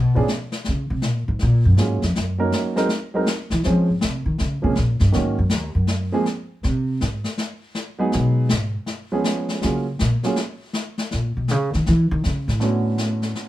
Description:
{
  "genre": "jazz, small-group swing and bop",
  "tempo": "161 BPM",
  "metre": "4/4",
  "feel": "swing 65% on 8ths",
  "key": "Db major",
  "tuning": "A4 = 440 Hz",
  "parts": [
    { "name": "upright bass", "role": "bass", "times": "0.0-13.3 s", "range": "Eb2 to F3", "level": "-19 LUFS", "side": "equal", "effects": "none" },
    { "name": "warm grand piano", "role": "accompaniment", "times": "0.1-13.5 s", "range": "D3 to Bb4", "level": "-22 LUFS", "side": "right 2 dB", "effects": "none" },
    { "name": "snare drum and brushed snare drum", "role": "drums", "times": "0.3-13.5 s", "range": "none", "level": "-26 LUFS", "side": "left 2 dB", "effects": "none" }
  ],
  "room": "moderate studio reverb, RT60 0.6 s",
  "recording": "band playing live in one room",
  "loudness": "-19 LUFS",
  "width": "side -15 dB against mid",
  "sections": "0.0-9.6 A section; 9.6-13.5 A section",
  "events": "upright bass solo 0.0-13.5",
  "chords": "0.0 Db7b9; 0.7 Gbmaj9; 2.1 Ebm7; 2.9 Ab7; 3.6 Dbmaj7; 4.4 Bbm7; 5.1 Ebm7; 5.9 Ab13; 6.6 Ab; 8.1 Abm7; 8.9 Db7; 9.6 F#maj9; 11.1 Aadd9 (rootless); 12.6 Bm9"
}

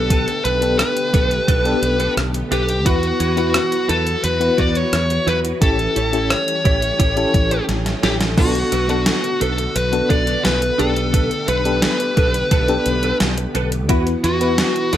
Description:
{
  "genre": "1980s-style pop",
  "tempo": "87 BPM",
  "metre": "4/4",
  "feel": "straight",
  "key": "unclear",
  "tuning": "A4 = 442 Hz",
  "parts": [
    { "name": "fuzz lead guitar", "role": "melody", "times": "0.0-15.0 s", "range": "F#4 to D5", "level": "-20 LUFS", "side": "equal", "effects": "distortion, tape echo" },
    { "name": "FM electric piano with tremolo", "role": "accompaniment", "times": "0.0-15.0 s", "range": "B3 to B4", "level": "-23 LUFS", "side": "left 3 dB", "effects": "none" },
    { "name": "string machine, full ensemble", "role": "sustained chords", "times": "0.0-15.0 s", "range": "D3 to F#5", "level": "-28 LUFS", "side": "equal", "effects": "ensemble chorus" },
    { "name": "direct-recorded clean electric guitar", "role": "riff", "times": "0.0-15.0 s", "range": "D4 to C#5", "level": "-26 LUFS", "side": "right 3 dB", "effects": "ensemble chorus" },
    { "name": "mellow fretless electric bass", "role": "bass", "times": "0.0-15.0 s", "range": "A1 to E2", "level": "-23 LUFS", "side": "equal", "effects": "none" },
    { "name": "gated 80s digital drum machine", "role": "drums", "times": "0.1-15.0 s", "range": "crash cymbal, hi-hat, kick drum, rim click, snare drum", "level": "-19 LUFS", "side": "equal", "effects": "gated reverb, gated reverb snare, overdrive" }
  ],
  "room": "moderate studio reverb, RT60 0.6 s",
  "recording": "none",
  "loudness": "-15 LUFS",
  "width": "side -11 dB against mid",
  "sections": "0.0-15.0 A section",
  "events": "drum fill 7.7-8.4",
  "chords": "0.0 Gadd9/B; 2.9 Esus2; 5.6 A7; 8.4 Bm7; 10.8 Gadd9/B; 13.9 Esus2"
}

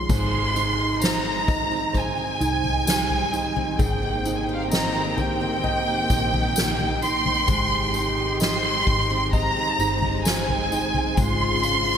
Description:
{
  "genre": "pop ballad",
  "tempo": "65 BPM",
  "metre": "4/4",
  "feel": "straight",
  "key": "Ab major",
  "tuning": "A4 = 440 Hz",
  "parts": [
    { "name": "warm studio violin section", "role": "melody", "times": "0.0-12.0 s", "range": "F5 to C6", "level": "-24 LUFS", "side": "right 1 dB", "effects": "none" },
    { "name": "warm baby grand piano", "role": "accompaniment", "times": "0.0-12.0 s", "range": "Ab2 to Eb5", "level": "-31 LUFS", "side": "right 4 dB", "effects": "none" },
    { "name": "warm studio string section", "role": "sustained chords", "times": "0.0-12.0 s", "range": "Db3 to G5", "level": "-32 LUFS", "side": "left 1 dB", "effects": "none" },
    { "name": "mellow French horn section", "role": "second line", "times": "0.1-12.0 s", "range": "G2 to G4", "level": "-33 LUFS", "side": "left 3 dB", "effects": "none" },
    { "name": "picked steel-string acoustic guitar", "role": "arpeggios", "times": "0.1-12.0 s", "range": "Ab2 to C5", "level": "-34 LUFS", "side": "right 5 dB", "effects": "wide subtle chorus, ping-pong delay" },
    { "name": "vintage muted fingered electric bass", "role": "bass", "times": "0.1-12.0 s", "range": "G1 to C2", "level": "-30 LUFS", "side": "left 1 dB", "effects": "none" },
    { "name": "soft-mallet drum kit", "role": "drums", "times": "0.1-11.4 s", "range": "crash cymbal, kick drum, snare drum, toms", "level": "-26 LUFS", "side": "left 1 dB", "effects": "gated reverb" },
    { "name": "tambourine", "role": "percussion", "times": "0.1-11.8 s", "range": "none", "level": "-34 LUFS", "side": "left 5 dB", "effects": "none" }
  ],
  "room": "moderate lush hall reverb, RT60 2.9 s",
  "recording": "bright 1980s-style digital production",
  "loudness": "-20 LUFS",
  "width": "side -8 dB against mid",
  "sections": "0.1-12.0 A section",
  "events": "none",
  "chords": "0.1 Abmaj7; 3.8 Cm7/Ab; 7.5 Abmaj7; 11.2 Dbmaj7/Ab"
}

